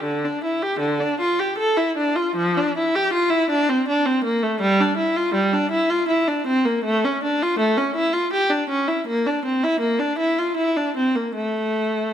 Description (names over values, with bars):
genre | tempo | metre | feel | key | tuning
classical, baroque-style suite movement for unaccompanied viola | 80 BPM | 3/4 | uneven beats, rubato | D minor | A4 = 439 Hz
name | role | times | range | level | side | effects
rich viola | solo | 0.0-12.1 s | D3 to A4 | -19 LUFS | equal | none
room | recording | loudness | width
moderate recital hall reverb, RT60 1.6 s | close, detailed microphones | -19 LUFS | side -9 dB against mid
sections
0.0-12.1 A section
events
none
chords
none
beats
| 0.03 0.80 1.56 | 2.35 3.13 3.88 | 4.62 5.34 6.08 | 6.84 7.59 8.32 | 9.05 9.79 10.55 | 11.34